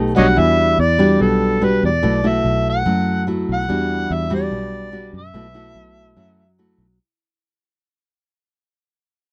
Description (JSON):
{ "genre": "bossa nova", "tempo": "145 BPM", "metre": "4/4", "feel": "straight", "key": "E minor", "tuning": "A4 = 439 Hz", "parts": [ { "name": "nylon-string guitar", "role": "accompaniment", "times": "0.0-7.0 s", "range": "B2 to G4", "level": "-21 LUFS", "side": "equal", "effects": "none" }, { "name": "fingered electric bass", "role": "bass", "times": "0.0-7.0 s", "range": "B1 to F#2", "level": "-24 LUFS", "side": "equal", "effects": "none" }, { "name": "overdriven harmonica", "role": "melody", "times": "0.2-6.6 s", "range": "A4 to F#5", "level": "-22 LUFS", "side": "equal", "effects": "none" } ], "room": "light reverb", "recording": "dry, close 1970s-style studio recording", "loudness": "-17 LUFS", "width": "mono", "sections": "0.4-7.0 A section", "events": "fade-out 0.4-7.0", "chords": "0.4 Em9; 2.0 B7sus4; 3.7 Em9; 5.3 B7sus4" }